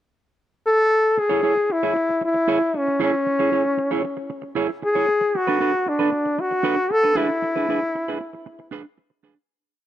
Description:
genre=disco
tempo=115 BPM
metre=4/4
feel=straight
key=unclear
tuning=A4 = 441 Hz
part: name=brilliant trombone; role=melody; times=0.7-8.7 s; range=C#4 to A4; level=-19 LUFS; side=left 1 dB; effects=none
part: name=semi-hollow electric guitar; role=accompaniment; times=1.2-9.4 s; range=D4 to C#5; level=-26 LUFS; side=right 5 dB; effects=none
room=light reverb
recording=dark, warm production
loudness=-18 LUFS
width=side -12 dB against mid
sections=0.0-1.2 pickup bar; 1.2-9.5 pre-chorus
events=fade-out 7.4-9.5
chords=0.0 N.C.; 1.2 C#m; 5.1 Bm7; 7.2 E7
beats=0.13 0.65 | 1.18 1.70 2.22 2.74 | 3.27 3.79 4.31 4.83 | 5.35 5.87 6.39 6.91 | 7.42 7.94 8.46 8.97

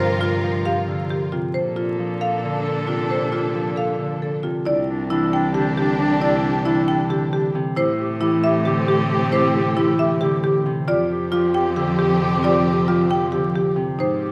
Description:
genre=classical, minimalist pattern music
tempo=270 BPM (eighths)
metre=7/8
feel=straight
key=C mixolydian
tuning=A4 = 440 Hz
part: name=marimba with medium hard mallets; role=melody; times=0.0-14.3 s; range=G4 to G5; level=-28 LUFS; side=equal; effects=none
part: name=warm clarinet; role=second line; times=0.0-14.3 s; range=D4 to Bb4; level=-29 LUFS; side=equal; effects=none
part: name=Celtic harp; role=accompaniment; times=0.0-14.0 s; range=C3 to F3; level=-27 LUFS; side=equal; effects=none
part: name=warm symphonic string section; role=sustained chords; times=0.0-14.3 s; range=C4 to Bb4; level=-31 LUFS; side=equal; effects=none
part: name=marimba with medium mallets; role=arpeggios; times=0.0-14.3 s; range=Eb4 to A4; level=-27 LUFS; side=equal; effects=none
part: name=rich cello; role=bass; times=0.0-14.3 s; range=C2 to Bb2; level=-28 LUFS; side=equal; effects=none
room=moderate recital hall reverb, RT60 1.4 s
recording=vinyl crackle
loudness=-20 LUFS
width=mono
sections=0.0-4.7 A section; 4.7-14.3 B section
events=none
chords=0.0 Gm7; 1.5 Bbmaj7; 4.7 Csus2; 7.8 Am7; 10.9 Fsus2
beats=0.21 0.43 0.66 0.88 1.10 1.32 | 1.54 1.77 1.99 2.21 2.43 2.66 2.88 | 3.10 3.32 3.54 3.77 3.99 4.21 4.43 | 4.66 4.88 5.10 5.32 5.54 5.77 5.99 | 6.21 6.43 6.66 6.88 7.10 7.32 7.54 | 7.77 7.99 8.21 8.43 8.66 8.88 9.10 | 9.32 9.54 9.77 9.99 10.21 10.43 10.66 | 10.88 11.10 11.32 11.54 11.77 11.99 12.21 | 12.43 12.66 12.88 13.10 13.32 13.54 13.77 | 13.99 14.21

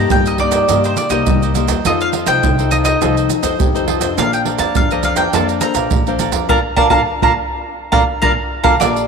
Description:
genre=samba and choro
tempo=104 BPM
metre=4/4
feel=straight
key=Bb major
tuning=A4 = 440 Hz
part: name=bowl-back mandolin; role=melody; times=0.0-9.1 s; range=C5 to Bb5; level=-17 LUFS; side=right 2 dB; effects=none
part: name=breathy trombone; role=second line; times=0.0-9.1 s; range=D4 to G4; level=-24 LUFS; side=left 9 dB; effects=none
part: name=cavaquinho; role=accompaniment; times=0.0-9.0 s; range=Eb4 to Bb5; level=-23 LUFS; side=right 10 dB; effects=none
part: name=nylon-string guitar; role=accompaniment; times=0.0-9.1 s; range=C3 to D5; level=-21 LUFS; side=left 11 dB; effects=none
part: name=upright bass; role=bass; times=0.0-9.1 s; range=Bb1 to G2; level=-23 LUFS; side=equal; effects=none
part: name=maracas, surdo, pandeiro and tamborim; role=percussion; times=0.1-9.1 s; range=none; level=-18 LUFS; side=right 4 dB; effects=none
room=moderate plate reverb, RT60 2.9 s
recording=1960s-style stereo with parts hard left and right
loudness=-13 LUFS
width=side -5 dB against mid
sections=0.0-8.8 A section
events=band accent 6.5-8.8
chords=0.0 Cm7; 1.9 F7; 4.2 Bbmaj9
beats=0.12 0.70 1.28 | 1.86 2.44 3.02 3.60 | 4.18 4.76 5.34 5.92 | 6.50 7.08 7.65 8.23 | 8.81

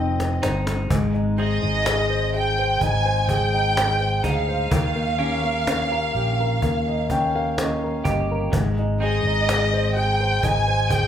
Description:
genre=pop ballad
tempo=63 BPM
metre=4/4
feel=straight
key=unclear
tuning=A4 = 439 Hz
part: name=warm symphonic violin section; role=melody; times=0.0-11.1 s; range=Eb5 to Ab5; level=-23 LUFS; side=right 1 dB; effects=none
part: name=warm concert grand piano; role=accompaniment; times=0.0-11.1 s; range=Eb3 to G5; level=-26 LUFS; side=left 2 dB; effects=none
part: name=twelve-string electric guitar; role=arpeggios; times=0.0-11.1 s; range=Ab2 to Bb4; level=-32 LUFS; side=right 2 dB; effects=none
part: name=fretless electric bass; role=bass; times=0.0-11.1 s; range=F1 to Eb2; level=-24 LUFS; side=equal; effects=none
part: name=cajon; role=drums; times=0.2-11.1 s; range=none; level=-26 LUFS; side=equal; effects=none
room=moderate large studio reverb, RT60 0.9 s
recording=band playing live in one room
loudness=-19 LUFS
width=side -9 dB against mid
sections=0.9-11.1 A section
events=drum fill 0.0-0.9; grand piano fill 6.6-8.5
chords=0.0 Fm7; 0.9 Ab; 4.7 Eb7; 8.5 Ab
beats=| 0.91 1.86 2.82 3.77 | 4.72 5.67 6.63 7.58 | 8.53 9.48 10.44

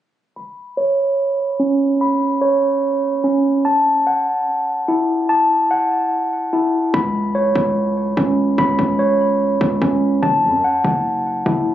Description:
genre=hip hop, drill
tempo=146 BPM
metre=4/4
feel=half-time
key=unclear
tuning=A4 = 438 Hz
part: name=mellow tine electric piano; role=arpeggios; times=0.4-11.7 s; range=C#4 to B5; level=-16 LUFS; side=equal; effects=low-pass filter, ping-pong delay
part: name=hard-hitting 808-style bass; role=bass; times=6.9-11.7 s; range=F#1 to F#2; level=-20 LUFS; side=left 1 dB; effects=none
room=light reverb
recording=recorded on a phone in the room, club reverb, compression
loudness=-15 LUFS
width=side -12 dB against mid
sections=0.4-6.9 A section; 6.9-11.7 B section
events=filter sweep on tine electric piano 0.4-6.9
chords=0.4 Bsus2/C#; 3.7 F#m7; 6.9 Bsus2/C#; 10.2 F#m7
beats=| 0.36 0.77 1.19 1.60 | 2.01 2.42 2.83 3.24 | 3.65 4.06 4.47 4.88 | 5.29 5.71 6.12 6.53 | 6.94 7.35 7.76 8.17 | 8.58 8.99 9.40 9.81 | 10.23 10.64 11.05 11.46

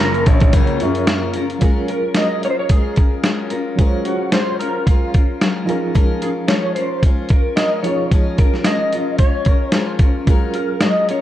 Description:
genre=indie pop, bedroom pop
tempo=111 BPM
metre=4/4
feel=swing 55% on 16ths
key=unclear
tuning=A4 = 441 Hz
part: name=clean lap steel guitar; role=melody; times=0.0-11.2 s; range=F4 to Eb5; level=-22 LUFS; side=equal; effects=ensemble chorus, analog delay
part: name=picked steel-string acoustic guitar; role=accompaniment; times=0.0-11.2 s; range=F3 to Bb4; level=-23 LUFS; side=left 5 dB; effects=wide subtle chorus, warbly pitch drift, analog delay
part: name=reed electric piano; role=accompaniment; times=0.0-11.2 s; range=F3 to Db5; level=-26 LUFS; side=right 4 dB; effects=fast tremolo, cassette tape, analog delay
part: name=string machine, full ensemble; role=sustained chords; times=0.0-1.6 s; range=Db3 to F4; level=-28 LUFS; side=right 1 dB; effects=phaser, ensemble chorus
part: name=clear grand piano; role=bass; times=0.0-1.2 s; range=Gb1 to Gb2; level=-21 LUFS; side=equal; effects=none
part: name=dusty soul sampler-style drum kit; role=drums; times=0.1-11.2 s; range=hi-hat, kick drum, snare drum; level=-15 LUFS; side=equal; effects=none
room=light reverb, digital ambience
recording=echo-heavy mix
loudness=-14 LUFS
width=side -12 dB against mid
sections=0.0-1.6 A section; 1.6-11.2 B section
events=none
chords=0.0 Gbmaj7; 1.6 Gbmaj9; 5.7 Db6/F; 10.3 Gbmaj9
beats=0.00 0.54 1.08 | 1.62 2.16 2.70 3.24 | 3.78 4.33 4.87 5.41 | 5.95 6.49 7.03 7.57 | 8.11 8.65 9.19 9.73 | 10.28 10.82

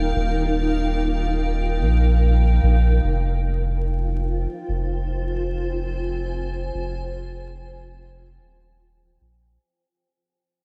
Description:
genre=ambient dub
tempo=73 BPM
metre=4/4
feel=swing 58% on 16ths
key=F minor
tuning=A4 = 440 Hz
part: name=granular cloud pad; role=sustained chords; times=0.0-9.6 s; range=Eb4 to Ab5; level=-29 LUFS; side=equal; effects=built-in reverb, vintage 12-bit sampler grit
part: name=soft dub sub bass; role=bass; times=0.0-9.6 s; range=Eb1 to Bb1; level=-23 LUFS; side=equal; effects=none
room=light reverb, digital ambience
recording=vinyl crackle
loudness=-22 LUFS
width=mono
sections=0.0-3.0 A section; 3.0-9.6 B section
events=fade-out 3.0-9.6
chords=0.0 Eb; 3.0 Fm7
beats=0.57 1.40 2.22 | 3.04 3.86 4.68 5.50 | 6.33 7.15 7.97 8.79

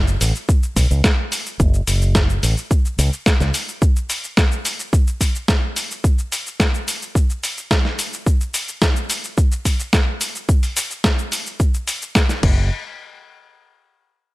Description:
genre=nu-disco, nu disco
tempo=108 BPM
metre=4/4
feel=straight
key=F# minor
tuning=A4 = 441 Hz
part: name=fingered electric bass with an envelope filter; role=bass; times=0.0-3.5, 12.4-12.7 s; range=F#1 to C#2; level=-17 LUFS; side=equal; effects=sidechain pumping
part: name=dusty soul sampler-style drum kit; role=drums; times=0.1-12.5 s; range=crash cymbal, hi-hat, shaker, snare drum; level=-21 LUFS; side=equal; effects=none
part: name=electronic kick drum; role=drums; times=0.5-12.5 s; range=none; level=-16 LUFS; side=equal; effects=none
room=little or no reverb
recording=none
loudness=-16 LUFS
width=side -20 dB against mid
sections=0.0-12.7 A section; 12.7-14.3 B section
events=none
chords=none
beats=0.49 1.04 | 1.60 2.15 2.71 3.27 | 3.82 4.38 4.93 5.49 | 6.04 6.60 7.15 7.71 | 8.27 8.82 9.38 9.93 | 10.49 11.04 11.60 12.15

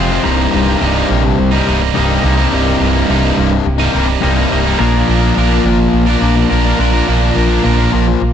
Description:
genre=post-rock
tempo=105 BPM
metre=4/4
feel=straight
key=C minor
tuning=A4 = 441 Hz
part: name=pedal steel guitar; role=sustained chords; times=0.0-8.3 s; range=G4 to Bb5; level=-28 LUFS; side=right 2 dB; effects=none
part: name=twangy electric guitar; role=arpeggios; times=0.0-8.3 s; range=C2 to Bb4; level=-20 LUFS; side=left 2 dB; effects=tape echo
part: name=cranked stack guitar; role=riff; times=0.0-8.1 s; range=C2 to Bb4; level=-16 LUFS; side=right 11 dB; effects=overdrive
part: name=distorted electric guitar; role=riff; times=0.0-8.2 s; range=C2 to Bb4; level=-16 LUFS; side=left 10 dB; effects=overdrive
part: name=fingered electric bass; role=bass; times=0.0-8.3 s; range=C1 to C2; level=-16 LUFS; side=right 1 dB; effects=none
room=light reverb, digital ambience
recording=none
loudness=-10 LUFS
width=side -9 dB against mid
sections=0.0-8.3 A section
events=none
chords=0.2 Cm7; 4.8 Bb7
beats=| 0.24 0.81 1.38 1.95 | 2.52 3.08 3.65 4.22 | 4.79 5.36 5.93 6.50 | 7.07 7.64 8.21

